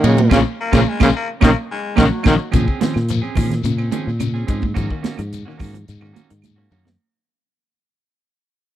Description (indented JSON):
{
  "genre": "afrobeat",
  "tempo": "108 BPM",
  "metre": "4/4",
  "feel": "straight",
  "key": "Bb minor",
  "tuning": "A4 = 436 Hz",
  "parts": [
    { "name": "edgy tenor saxophone", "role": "second line", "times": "0.0-2.3 s", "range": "Ab3 to Bb3", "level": "-26 LUFS", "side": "right 4 dB", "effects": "none" },
    { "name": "electric guitar at the edge of break-up", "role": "arpeggios", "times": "0.0-6.9 s", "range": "Bb2 to Ab3", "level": "-24 LUFS", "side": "left 6 dB", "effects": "none" },
    { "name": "clean electric guitar", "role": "stabs", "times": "0.0-6.9 s", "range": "Eb3 to Ab4", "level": "-26 LUFS", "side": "right 8 dB", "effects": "spring reverb" },
    { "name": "fingered electric bass", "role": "bass", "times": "0.0-7.0 s", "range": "Bb1 to Bb2", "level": "-20 LUFS", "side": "equal", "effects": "none" },
    { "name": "tight funk drum kit", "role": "drums", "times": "0.0-7.0 s", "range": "hi-hat, kick drum, ride cymbal, snare drum, toms", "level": "-18 LUFS", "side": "equal", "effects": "none" },
    { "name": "shekere", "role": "percussion", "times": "0.0-7.0 s", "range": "none", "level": "-31 LUFS", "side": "left 7 dB", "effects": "none" },
    { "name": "clear trombone", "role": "melody", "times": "0.1-2.3 s", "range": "Db3 to Eb3", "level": "-19 LUFS", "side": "equal", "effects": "none" },
    { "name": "congas", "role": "percussion", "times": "0.2-7.0 s", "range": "none", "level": "-23 LUFS", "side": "right 8 dB", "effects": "none" },
    { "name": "claves", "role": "percussion", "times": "0.3-6.6 s", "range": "none", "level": "-30 LUFS", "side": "right 11 dB", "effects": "none" },
    { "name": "raspy baritone saxophone", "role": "second line", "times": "0.6-2.5 s", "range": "Gb3 to Bb3", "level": "-25 LUFS", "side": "left 5 dB", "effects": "none" }
  ],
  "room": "little or no reverb",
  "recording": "dry, close 1970s-style studio recording",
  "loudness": "-15 LUFS",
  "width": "side -12 dB against mid",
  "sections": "0.0-2.5 A section; 2.5-7.0 B section",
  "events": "band accent 0.3-2.5; drum fill 2.0-2.5, 6.7; fade-out 2.5-7.0",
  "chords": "0.3 Bbm; 1.4 Ebm7/Bb; 2.5 Bbm9; 4.8 Ab9sus4",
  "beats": "| 0.31 0.87 1.42 1.98 | 2.54 3.09 3.65 4.21 | 4.76 5.32 5.88 6.43"
}